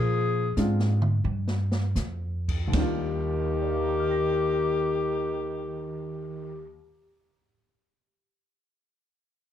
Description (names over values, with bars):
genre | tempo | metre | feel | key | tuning
jazz, small-group swing and bop | 75-96 BPM | 4/4 | swing 68% on 8ths | Eb major | A4 = 440 Hz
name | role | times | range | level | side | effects
breathy clarinet | melody | 0.0-6.7 s | G4 to Ab4 | -28 LUFS | left 5 dB | plate reverb
breathy tenor saxophone | second line | 0.0-6.7 s | Eb3 to F3 | -33 LUFS | right 4 dB | none
upright bass | bass | 0.0-6.8 s | Eb2 to Bb2 | -28 LUFS | equal | none
warm baby grand piano | accompaniment | 0.6-7.7 s | Eb2 to Bb6 | -31 LUFS | equal | none
open jazz drum kit | drums | 0.6-3.0 s | crash cymbal, hi-hat, kick drum, ride cymbal, snare drum, toms | -32 LUFS | right 1 dB | none
room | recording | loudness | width
light reverb | dark, warm production | -24 LUFS | side -10 dB against mid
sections
0.0-2.7 A section; 2.7-5.9 B section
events
slowing down 0.0-2.7; drum fill 0.6-2.0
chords
0.0 Bb7; 2.7 Ebmaj9